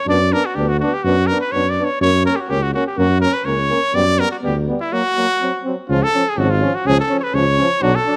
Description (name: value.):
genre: balkan folk, Balkan brass band.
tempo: 124 BPM.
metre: 2/4.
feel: swing 54% on 16ths.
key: unclear.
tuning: A4 = 440 Hz.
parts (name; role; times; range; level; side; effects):
clear trumpet; melody; 0.0-8.2 s; E4 to D5; -21 LUFS; equal; none.
clear euphonium; accompaniment; 0.1-8.2 s; E#3 to B3; -27 LUFS; equal; none.
clear trombone; accompaniment; 0.1-8.2 s; A#3 to D4; -26 LUFS; equal; none.
mellow tuba; bass; 0.1-8.0 s; G#1 to F#2; -21 LUFS; equal; none.
room: light reverb.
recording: close, detailed microphones.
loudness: -17 LUFS.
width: mono.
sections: 0.0-5.9 A section; 5.9-8.2 B section.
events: none.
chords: 0.1 D6; 1.0 Bm/F#; 2.0 F#; 4.0 G/F#; 4.9 F#; 5.4 N.C.; 5.9 C#.